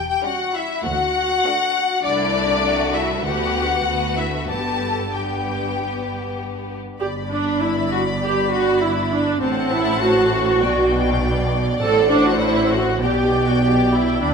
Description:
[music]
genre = quick classical-period movement for string orchestra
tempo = 100 BPM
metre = 4/4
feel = straight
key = G major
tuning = A4 = 440 Hz
[part]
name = rich studio violin section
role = melody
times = 0.0-14.3 s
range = D5 to B5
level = -23 LUFS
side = left 5 dB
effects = none
[part]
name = warm studio viola section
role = accompaniment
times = 0.0-14.3 s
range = C4 to A4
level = -21 LUFS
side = right 2 dB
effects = none
[part]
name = rich studio cello section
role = bass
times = 0.0-14.3 s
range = C2 to D3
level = -26 LUFS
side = right 2 dB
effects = none
[part]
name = rich studio double bass section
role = bass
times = 0.0-14.3 s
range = E1 to D2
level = -26 LUFS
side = right 2 dB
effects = none
[part]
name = rich studio violin section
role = second line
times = 0.3-14.3 s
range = G3 to G5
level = -26 LUFS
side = left 3 dB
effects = none
[sound]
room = moderate scoring stage reverb, RT60 1.9 s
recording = none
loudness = -17 LUFS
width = side -6 dB against mid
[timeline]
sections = 0.0-7.0 A section; 7.0-14.3 B section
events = none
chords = 0.0 C#dim/E; 0.8 D; 2.0 Am/C; 3.2 G/D; 3.9 D69; 4.5 G; 9.4 F#dim/A; 10.6 G/B; 11.8 D7/A; 13.0 G/B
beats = 0.24 0.84 1.44 | 2.04 2.64 3.24 3.85 | 4.50 5.13 5.76 6.39 | 7.01 7.61 8.22 8.82 | 9.42 10.02 10.62 11.21 | 11.81 12.41 13.02 13.62 | 14.23

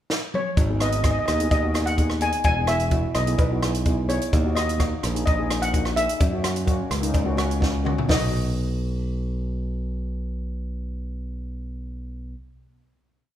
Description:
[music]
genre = calypso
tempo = 128 BPM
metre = 4/4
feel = straight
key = B major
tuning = A4 = 440 Hz
[part]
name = compact cocktail drum kit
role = drums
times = 0.1-8.2 s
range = hi-hat, kick drum, rim click, snare drum, toms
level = -24 LUFS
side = equal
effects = none
[part]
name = steel pan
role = melody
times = 0.4-12.3 s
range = B4 to G#5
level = -26 LUFS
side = left 1 dB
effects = none
[part]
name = modern bright fingered electric bass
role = bass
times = 0.6-12.3 s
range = E1 to F#2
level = -26 LUFS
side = equal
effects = none
[part]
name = cowbell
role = percussion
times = 0.6-8.3 s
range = none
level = -36 LUFS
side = left 3 dB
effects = none
[part]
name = steel pan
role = accompaniment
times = 0.7-12.3 s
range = A#3 to B4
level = -29 LUFS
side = equal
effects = none
[sound]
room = wet large studio reverb, RT60 1.4 s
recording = band playing live in one room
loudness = -21 LUFS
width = side -11 dB against mid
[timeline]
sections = 0.0-0.6 pickup bar; 0.6-8.1 verse; 8.1-11.9 final chord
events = drum fill 0.1-0.6, 7.6-8.1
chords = 0.0 N.C.; 0.6 G#m; 2.5 E; 4.3 D#m; 6.2 F#7; 8.1 B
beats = 0.10 | 0.57 1.04 1.51 1.98 | 2.45 2.92 3.39 3.86 | 4.33 4.80 5.27 5.74 | 6.21 6.68 7.15 7.62 | 8.09 8.56 9.03 9.50 | 9.97 10.44 10.92 11.39

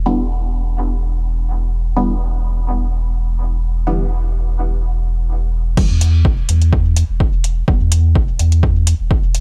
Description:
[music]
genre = dub techno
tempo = 126 BPM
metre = 4/4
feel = swing 54% on 16ths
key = E minor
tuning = A4 = 440 Hz
[part]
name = pure sine sub bass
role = bass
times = 0.0-9.4 s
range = E1 to E2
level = -18 LUFS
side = equal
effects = sidechain pumping
[part]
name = filtered dub chord stab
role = stabs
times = 0.1-7.8 s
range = D3 to B3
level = -26 LUFS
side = equal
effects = phaser, sidechain pumping, dub echo
[part]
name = deep house drum kit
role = drums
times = 5.8-9.4 s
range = crash cymbal, hi-hat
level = -26 LUFS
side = equal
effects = small room ambience
[part]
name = electronic kick drum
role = drums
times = 5.8-9.2 s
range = none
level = -18 LUFS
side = equal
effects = overdrive, small room ambience
[sound]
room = digital ambience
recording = dark, warm production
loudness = -17 LUFS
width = mono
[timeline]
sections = 0.0-5.8 A section; 5.8-9.4 B section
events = none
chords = none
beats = | 0.06 0.54 1.01 1.49 | 1.97 2.44 2.92 3.39 | 3.87 4.35 4.82 5.30 | 5.77 6.25 6.73 7.20 | 7.68 8.15 8.63 9.11

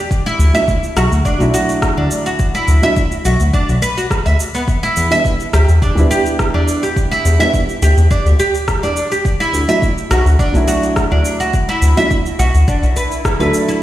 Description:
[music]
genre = organic downtempo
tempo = 105 BPM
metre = 4/4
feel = straight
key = unclear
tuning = A4 = 440 Hz
[part]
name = oud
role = arpeggios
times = 0.0-13.8 s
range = B3 to E5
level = -17 LUFS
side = right 1 dB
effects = ping-pong delay
[part]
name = electronic cabasa and rim click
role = drums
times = 0.1-13.8 s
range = none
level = -25 LUFS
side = equal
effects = overdrive
[part]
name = electronic kick drum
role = drums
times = 0.1-13.4 s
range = none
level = -18 LUFS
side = equal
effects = overdrive
[part]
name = smooth synth bass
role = bass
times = 0.4-13.5 s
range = B1 to E2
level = -13 LUFS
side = equal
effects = sidechain pumping
[part]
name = felt-muted upright piano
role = accompaniment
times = 0.5-13.8 s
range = F#3 to A4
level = -19 LUFS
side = right 1 dB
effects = sidechain pumping, ping-pong delay
[part]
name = swell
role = sound effects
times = 12.9-13.8 s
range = none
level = -25 LUFS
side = right 1 dB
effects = none
[sound]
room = moderate recital hall reverb, RT60 1.4 s, digital ambience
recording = played on a big sound system in a bare room, stone room reverb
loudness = -12 LUFS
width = side -14 dB against mid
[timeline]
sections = 0.0-13.8 A section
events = swell 12.9-13.8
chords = 0.1 Dadd9; 4.7 Em7; 9.3 Dadd9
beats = | 0.11 0.68 1.25 1.82 | 2.39 2.96 3.54 4.11 | 4.68 5.25 5.82 6.39 | 6.96 7.54 8.11 8.68 | 9.25 9.82 10.39 10.96 | 11.54 12.11 12.68 13.25

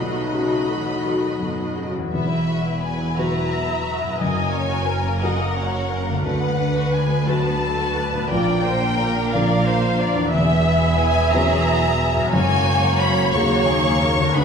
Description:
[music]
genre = cinematic, emotional film score for orchestra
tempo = 59 BPM (dotted quarters)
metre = 6/8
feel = rubato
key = E lydian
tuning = A4 = 438 Hz
[part]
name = mellow clarinet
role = second line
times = 0.0-1.7 s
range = D#4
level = -29 LUFS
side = equal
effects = none
[part]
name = rich studio violin section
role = second line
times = 0.0-14.4 s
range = G#3 to B5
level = -26 LUFS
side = left 2 dB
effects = none
[part]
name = felt-muted upright piano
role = accompaniment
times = 0.0-14.4 s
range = E1 to B4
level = -24 LUFS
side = left 1 dB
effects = none
[part]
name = rich studio viola section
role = accompaniment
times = 0.0-14.4 s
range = F#3 to E5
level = -24 LUFS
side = right 2 dB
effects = none
[part]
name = mellow French horn section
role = sustained chords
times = 0.0-1.8 s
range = A3 to F#4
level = -27 LUFS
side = left 3 dB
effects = none
[part]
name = concert harp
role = arpeggios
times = 0.0-14.4 s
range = E2 to B4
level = -29 LUFS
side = left 3 dB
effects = none
[part]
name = warm studio cello section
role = bass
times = 0.0-14.4 s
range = D2 to Fb3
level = -28 LUFS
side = right 3 dB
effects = none
[part]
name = rich studio violin section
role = melody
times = 2.1-14.4 s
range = E5 to C#6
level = -25 LUFS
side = left 3 dB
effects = none
[part]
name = warm studio double bass section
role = bass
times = 2.1-14.4 s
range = E1 to D#2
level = -27 LUFS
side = right 3 dB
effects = none
[sound]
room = wet recital hall reverb, RT60 1.7 s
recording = recorded in a church or concert hall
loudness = -18 LUFS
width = side -6 dB against mid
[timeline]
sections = 0.0-2.1 A section; 2.1-14.4 B section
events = none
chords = 0.0 B7; 2.1 Esus2; 4.2 F#add9; 6.3 D6; 8.3 A#; 10.3 Esus2; 12.3 F#add9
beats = 1.04 | 2.13 3.18 | 4.21 5.24 | 6.26 7.28 | 8.31 9.33 | 10.33 11.33 | 12.33 13.33 | 14.35

